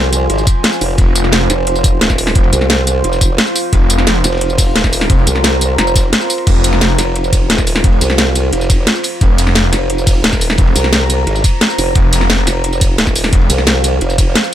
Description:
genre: dark technical drum and bass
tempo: 175 BPM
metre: 4/4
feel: straight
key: F minor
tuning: A4 = 439 Hz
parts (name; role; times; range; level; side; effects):
- deep dark ambient pad; sustained chords; 0.0-14.5 s; F4 to Bb5; -19 LUFS; right 1 dB; chorus, built-in reverb, sidechain pumping
- formant-sweep wobble bass; bass; 0.0-14.3 s; Eb1 to C2; -16 LUFS; equal; chorus
- crunchy breakbeat drum kit; drums; 0.1-14.4 s; hi-hat, ride cymbal, snare drum; -28 LUFS; equal; none
- drum and bass drum kit; drums; 0.1-14.5 s; crash cymbal, hi-hat, ride cymbal, snare drum, tambourine; -15 LUFS; equal; none
- electronic kick drum; drums; 0.5-14.3 s; none; -12 LUFS; equal; none
- wide detuned saw bass; bass; 1.0-13.5 s; F1; -14 LUFS; equal; chorus, overdrive
room: little or no reverb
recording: none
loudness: -10 LUFS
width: side -11 dB against mid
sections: 0.0-14.5 A section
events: break 6.1-6.5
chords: 0.0 Fm

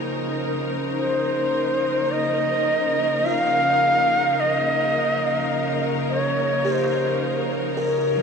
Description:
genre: ambient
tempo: 53 BPM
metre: 3/4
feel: straight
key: Db lydian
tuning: A4 = 440 Hz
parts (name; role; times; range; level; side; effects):
- bright studio string section; sustained chords; 0.0-8.2 s; F3 to Bb4; -28 LUFS; left 3 dB; none
- bowed-like drone; drone; 0.0-8.2 s; Db3 to Eb4; -28 LUFS; right 1 dB; built-in reverb
- reedy shakuhachi; melody; 1.0-7.5 s; C5 to F5; -21 LUFS; equal; ping-pong delay
- buzzing kalimba; arpeggios; 3.3-8.2 s; F4 to Bb4; -31 LUFS; equal; ping-pong delay
room: wet cathedral reverb, RT60 5.5 s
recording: none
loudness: -19 LUFS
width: side -6 dB against mid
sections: 0.0-8.2 A section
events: fade-in on string section 0.0-8.2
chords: 0.0 Dbmaj13

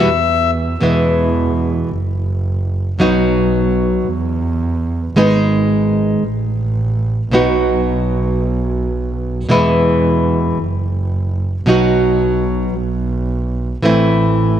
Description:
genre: tango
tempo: 111 BPM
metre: 4/4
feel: rubato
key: E major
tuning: A4 = 442 Hz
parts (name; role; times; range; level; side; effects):
- bandoneon; melody; 0.0-0.5 s; E5; -18 LUFS; left 8 dB; none
- nylon-string guitar; accompaniment; 0.0-14.6 s; B2 to G#4; -15 LUFS; equal; none
- warm double bass; bass; 0.0-14.6 s; F#1 to E2; -19 LUFS; right 2 dB; none
room: moderate plate reverb, RT60 2.5 s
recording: none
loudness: -14 LUFS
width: side -10 dB against mid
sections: 0.8-14.6 A section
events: none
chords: 0.0 E5; 0.8 E; 1.9 N.C.; 3.0 B; 4.1 N.C.; 5.2 G#m; 6.2 N.C.; 7.3 B; 9.5 E; 10.6 N.C.; 11.7 B; 12.8 N.C.; 13.8 Am

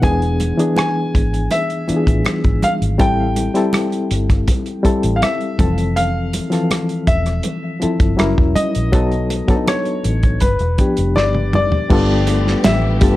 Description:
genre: lush 1970s-style soul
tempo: 81 BPM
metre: 4/4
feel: straight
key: A minor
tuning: A4 = 440 Hz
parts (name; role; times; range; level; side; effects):
- clear baby grand piano; melody; 0.0-13.2 s; B4 to G#5; -22 LUFS; left 1 dB; tape echo, plate reverb
- barky reed electric piano; accompaniment; 0.0-13.2 s; E3 to A#4; -19 LUFS; left 2 dB; overdrive, medium tremolo, plate reverb
- vintage muted fingered electric bass; bass; 0.0-13.2 s; E1 to B1; -19 LUFS; equal; none
- warm soul drum kit; drums; 0.0-13.2 s; crash cymbal, hi-hat, kick drum, rim click, snare drum, toms; -18 LUFS; equal; none
- congas; percussion; 0.0-12.8 s; none; -28 LUFS; right 2 dB; none
- warm studio string section; sustained chords; 11.9-13.2 s; F3 to G4; -24 LUFS; equal; plate reverb
room: light reverb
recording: none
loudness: -14 LUFS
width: side -16 dB against mid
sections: 0.0-11.9 A section; 11.9-13.2 B section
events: drum fill 11.2-11.9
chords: 0.0 E7; 3.0 Am7; 5.6 Fmaj7; 8.2 F#7; 8.9 B7; 10.4 G7; 11.9 G9

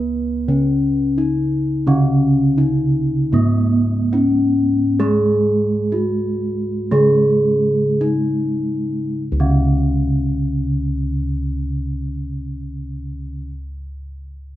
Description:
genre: Javanese gamelan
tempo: 48-87 BPM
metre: 4/4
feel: straight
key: C# slendro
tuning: A4 = 440 Hz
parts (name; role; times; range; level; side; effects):
- gamelan-type bronze metallophone; melody; 0.0-13.5 s; B3-40c to G#4+20c; -19 LUFS; left 1 dB; plate reverb
- gamelan-type bossed gongs; bass; 0.0-13.4 s; C#2 to B4-40c; -22 LUFS; equal; none
- gamelan-type bronze metallophone; accompaniment; 1.9-13.5 s; C#3 to B3-40c; -21 LUFS; right 2 dB; plate reverb
room: wet studio ambience, RT60 0.5 s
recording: rough home demo mix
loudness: -16 LUFS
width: side -14 dB against mid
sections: 0.0-9.2 A section; 9.2-14.2 B section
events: slowing down 1.9-9.2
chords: none

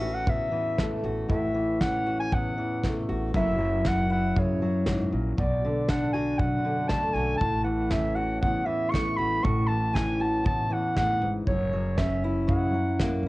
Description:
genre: acoustic folk duo or small band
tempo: 118 BPM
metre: 4/4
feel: straight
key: A major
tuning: A4 = 440 Hz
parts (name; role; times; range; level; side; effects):
- mellow clarinet; melody; 0.0-13.2 s; C#5 to C#6; -29 LUFS; equal; cassette tape, plate reverb
- fingerpicked steel-string acoustic guitar; accompaniment; 0.0-13.3 s; E2 to F#4; -28 LUFS; left 1 dB; cassette tape
- upright bass; bass; 0.0-13.3 s; F#1 to B2; -32 LUFS; equal; none
- soft brush drum kit; drums; 0.3-13.1 s; kick drum, snare drum; -30 LUFS; equal; cassette tape
room: wet studio ambience, RT60 0.5 s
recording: home recording on cassette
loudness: -24 LUFS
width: side -19 dB against mid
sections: 0.0-13.3 A section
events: none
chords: 0.0 A6; 3.3 F#7; 5.4 Bm7; 7.4 A6; 11.5 F#7

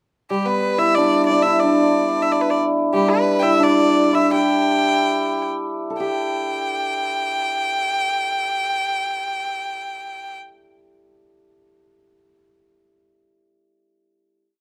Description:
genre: chinese traditional, Chinese chamber ensemble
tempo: 63-92 BPM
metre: 2/4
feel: rubato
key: G gong mode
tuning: A4 = 441 Hz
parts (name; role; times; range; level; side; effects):
- bright erhu; melody; 0.3-10.4 s; G4 to G5; -23 LUFS; equal; none
- hammered dulcimer; second line; 0.3-10.4 s; G3 to A4; -22 LUFS; equal; none
room: light reverb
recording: close, detailed microphones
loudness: -19 LUFS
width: mono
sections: 0.3-6.0 A section; 6.0-9.7 final chord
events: slowing down 2.9-6.0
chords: none

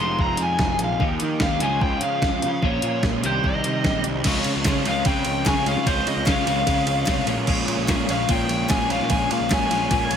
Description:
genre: indie rock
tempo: 148 BPM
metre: 4/4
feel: straight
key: unclear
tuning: A4 = 440 Hz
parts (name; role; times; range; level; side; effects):
- biting lead guitar; melody; 0.0-10.2 s; C5 to C6; -25 LUFS; left 2 dB; overdrive, slapback echo, tape echo
- overdriven electric guitar; riff; 0.0-10.2 s; F2 to Db5; -28 LUFS; right 7 dB; ensemble chorus, slapback echo
- twelve-string electric guitar; riff; 0.0-10.2 s; Bb2 to C5; -27 LUFS; left 8 dB; spring reverb
- fuzz picked electric bass; bass; 0.0-10.2 s; F1 to Eb3; -28 LUFS; equal; overdrive
- clean 12-bit digital drum machine; drums; 0.2-10.2 s; crash cymbal, hi-hat, kick drum, ride cymbal, snare drum; -24 LUFS; right 1 dB; overdrive
- group handclap; percussion; 4.7-9.6 s; none; -38 LUFS; left 4 dB; none
room: moderate lush hall reverb, RT60 1.7 s, digital ambience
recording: big arena sound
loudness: -19 LUFS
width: side -8 dB against mid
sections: 0.0-4.3 A section; 4.3-10.2 B section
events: none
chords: 0.0 Fm7; 1.0 Ebadd9; 1.6 Dbmaj7; 2.6 Bbmadd9; 3.2 Cm; 4.3 Dbmaj7; 7.3 Bbm7

